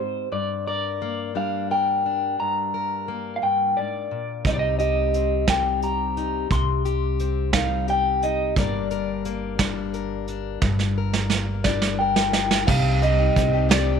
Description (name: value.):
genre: indie folk with a building arrangement.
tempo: 58 BPM (dotted quarters).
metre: 6/8.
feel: straight.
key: C minor.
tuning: A4 = 441 Hz.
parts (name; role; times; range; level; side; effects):
electric guitar through a small old amp; melody; 0.0-14.0 s; C5 to C6; -24 LUFS; equal; harmonic tremolo.
fingerpicked plugged-in steel-string acoustic guitar; accompaniment; 0.0-14.0 s; G2 to Bb4; -28 LUFS; left 10 dB; none.
soft brush drum kit; drums; 4.4-13.9 s; crash cymbal, hi-hat, kick drum, snare drum; -22 LUFS; right 4 dB; none.
upright bass; bass; 4.5-14.0 s; G1 to C2; -26 LUFS; right 1 dB; none.
picked twelve-string acoustic guitar; accompaniment; 12.7-14.0 s; C3 to G4; -28 LUFS; left 12 dB; none.
room: small room ambience.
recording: 1960s-style stereo.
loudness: -20 LUFS.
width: side -7 dB against mid.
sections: 0.0-12.7 A section; 12.7-14.0 B section.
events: drum fill 10.6-12.7.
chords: 0.3 Gm; 4.4 Cm; 8.6 Gm; 12.7 Cmadd9.